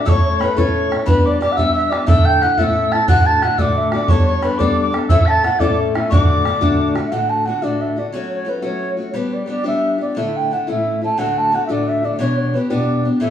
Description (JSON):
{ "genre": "celtic folk, Celtic jig", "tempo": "119 BPM (dotted quarters)", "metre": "6/8", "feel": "straight", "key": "D major", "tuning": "A4 = 438 Hz", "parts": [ { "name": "baroque flute", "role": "melody", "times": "0.0-13.3 s", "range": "B4 to A5", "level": "-19 LUFS", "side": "right 1 dB", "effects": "none" }, { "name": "mellow hollow tin whistle", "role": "second line", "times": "0.0-6.9 s", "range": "B5 to B6", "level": "-21 LUFS", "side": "left 2 dB", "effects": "none" }, { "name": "picked steel-string acoustic guitar", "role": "accompaniment", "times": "0.0-13.3 s", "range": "D2 to A4", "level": "-20 LUFS", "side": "left 3 dB", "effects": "none" }, { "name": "bodhran", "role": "percussion", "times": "0.1-7.0 s", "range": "none", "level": "-17 LUFS", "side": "right 1 dB", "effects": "none" } ], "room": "wet large studio reverb, RT60 0.9 s", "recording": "band playing live in one room, small room ambience", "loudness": "-14 LUFS", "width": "side -10 dB against mid", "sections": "0.0-7.1 A section; 7.1-13.3 A section", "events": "none", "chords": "0.1 A; 1.1 G; 2.1 Asus4; 2.6 A; 3.1 D; 4.1 Gadd9; 5.1 A; 6.1 D; 8.1 F#m; 9.1 G; 10.2 Asus4; 10.7 A; 11.2 D; 12.2 Em7" }